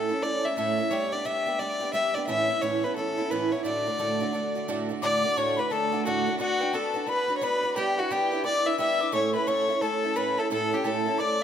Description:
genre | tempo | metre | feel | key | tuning
celtic folk | 175 BPM | 4/4 | swing 63% on 8ths | D major | A4 = 440 Hz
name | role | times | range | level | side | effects
rich fiddle | melody | 0.0-11.4 s | F#4 to E5 | -26 LUFS | left 1 dB | tape echo
picked twelve-string acoustic guitar | accompaniment | 0.0-11.4 s | D2 to B4 | -29 LUFS | right 4 dB | none
mellow tin whistle | second line | 5.0-11.4 s | F#5 to E6 | -30 LUFS | left 7 dB | none
room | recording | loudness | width
moderate recital hall reverb, RT60 1.5 s | none | -24 LUFS | side -8 dB against mid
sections
0.0-5.0 A section; 5.0-11.4 A section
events
none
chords
0.0 A; 0.9 G; 2.3 Aadd9; 3.7 D; 6.4 Bm; 7.8 G6; 9.1 A

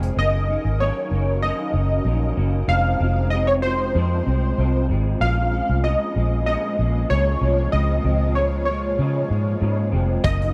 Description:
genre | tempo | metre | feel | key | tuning
indie pop, bedroom pop | 95 BPM | 4/4 | swing 55% on 16ths | Db major | A4 = 440 Hz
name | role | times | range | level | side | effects
electric guitar through a small old amp | accompaniment | 0.0-10.5 s | F2 to Db4 | -30 LUFS | equal | ensemble chorus, vibrato effect
shimmering ambient pad | sustained chords | 0.0-10.5 s | Bb2 to Ab5 | -34 LUFS | equal | chorus, built-in reverb
vintage muted fingered electric bass | bass | 0.0-10.5 s | F1 to Db3 | -23 LUFS | equal | none
soft brush drum kit | drums | 0.0-0.2, 10.2-10.5 s | hi-hat, kick drum | -27 LUFS | equal | none
warm analog keys | melody | 0.2-10.5 s | C5 to F5 | -26 LUFS | equal | ensemble chorus
room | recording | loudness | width
small room ambience | none | -21 LUFS | mono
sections
0.2-10.5 A section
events
none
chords
0.2 Gb6; 2.7 Fm; 5.2 Bbm7; 7.7 Dbmaj7

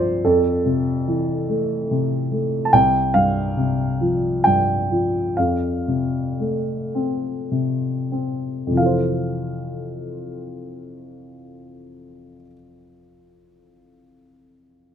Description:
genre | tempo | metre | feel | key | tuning
classical, lyrical solo piano | 45-73 BPM | 3/4 | rubato | F major | A4 = 441 Hz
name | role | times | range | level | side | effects
dark baby grand piano | solo | 0.0-14.9 s | C2 to A5 | -19 LUFS | equal | none
room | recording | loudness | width
light reverb | close, detailed microphones | -19 LUFS | side -8 dB against mid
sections
0.0-8.8 A section; 8.8-12.6 B section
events
slowing down 2.7-8.8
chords
0.2 Fmaj7; 2.7 Csus4; 5.4 F; 8.8 Fmaj7

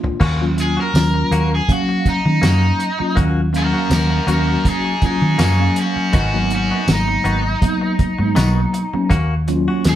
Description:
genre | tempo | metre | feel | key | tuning
straight-eighth soul blues | 81 BPM | 4/4 | swing 55% on 16ths | Eb minor | A4 = 442 Hz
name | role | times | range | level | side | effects
mellow tine electric piano | accompaniment | 0.0-10.0 s | Gb3 to F5 | -20 LUFS | equal | medium stereo tremolo
direct-recorded clean electric guitar | stabs | 0.0-9.9 s | Eb3 to Gb4 | -27 LUFS | left 3 dB | none
vintage muted fingered electric bass | bass | 0.0-10.0 s | Ab1 to Eb3 | -18 LUFS | equal | none
cloth-damped thuddy drum kit | drums | 0.0-10.0 s | crash cymbal, hi-hat, kick drum, snare drum, tambourine, toms | -19 LUFS | right 1 dB | none
raw garage guitar | melody | 0.6-10.0 s | Db4 to Bb4 | -21 LUFS | equal | overdrive
room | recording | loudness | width
moderate studio reverb, RT60 0.8 s | band playing live in one room | -14 LUFS | side -12 dB against mid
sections
0.2-10.0 A section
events
drum fill 0.0; overdriven electric guitar solo 0.2-10.0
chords
0.2 Ebm7; 6.1 Abm7; 9.1 Ebm7

